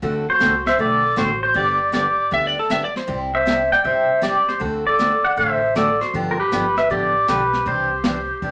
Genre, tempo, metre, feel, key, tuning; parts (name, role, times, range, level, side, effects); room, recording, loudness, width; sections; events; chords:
country, western swing; 157 BPM; 4/4; swing 66% on 8ths; C major; A4 = 440 Hz
picked steel-string acoustic guitar; accompaniment; 0.0-8.5 s; C3 to A4; -28 LUFS; equal
upright bass; bass; 0.0-8.5 s; G1 to D2; -36 LUFS; equal
vintage brush drum kit; drums; 0.0-8.5 s; brushed snare drum, hi-hat, kick drum, snare drum; -29 LUFS; equal
pedal steel guitar; melody; 0.3-8.5 s; Bb4 to G5; -20 LUFS; equal
mellow clarinet; second line; 0.3-8.5 s; F4 to D5; -26 LUFS; equal
clean lap steel guitar; second line; 2.3-3.2 s; A4 to E5; -23 LUFS; equal
wet small room reverb, RT60 0.5 s; -19 LUFS; mono
0.0-8.5 A section
0.0 D7; 1.6 G; 3.1 C; 4.6 D7; 6.1 G7; 7.7 Cadd9